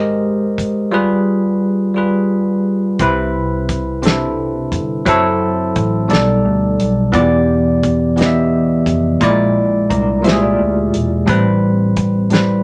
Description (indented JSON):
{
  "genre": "slow six-eight R&B",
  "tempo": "58 BPM (dotted quarters)",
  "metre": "6/8",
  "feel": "straight",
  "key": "C major",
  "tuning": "A4 = 439 Hz",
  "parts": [
    { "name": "bell-like tine electric piano", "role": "accompaniment", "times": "0.0-12.6 s", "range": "A2 to E5", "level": "-16 LUFS", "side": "equal", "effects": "none" },
    { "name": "vintage muted picked electric bass", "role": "bass", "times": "0.0-12.6 s", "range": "E1 to D2", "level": "-23 LUFS", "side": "equal", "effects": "none" },
    { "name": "damped 70s drum kit", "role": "drums", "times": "0.6-12.5 s", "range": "hi-hat, kick drum, snare drum", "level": "-20 LUFS", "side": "equal", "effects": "none" },
    { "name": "mellow electric guitar", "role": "second line", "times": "9.9-11.2 s", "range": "D4 to D5", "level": "-24 LUFS", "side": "equal", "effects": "tremolo" }
  ],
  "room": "wet studio reverb, RT60 0.5 s",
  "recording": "none",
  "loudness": "-15 LUFS",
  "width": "mono",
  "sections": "0.0-3.0 A section; 3.0-12.6 B section",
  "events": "none",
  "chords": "0.0 Abmaj9; 0.9 G7b9; 3.0 Cmaj7; 5.1 F#m7b5; 6.1 B7alt; 7.1 Em7; 9.2 Bb7#11; 11.3 Am9",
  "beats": "| 0.93 1.97 | 3.00 4.03 | 5.07 6.10 | 7.14 8.17 | 9.21 10.24 | 11.28 12.31"
}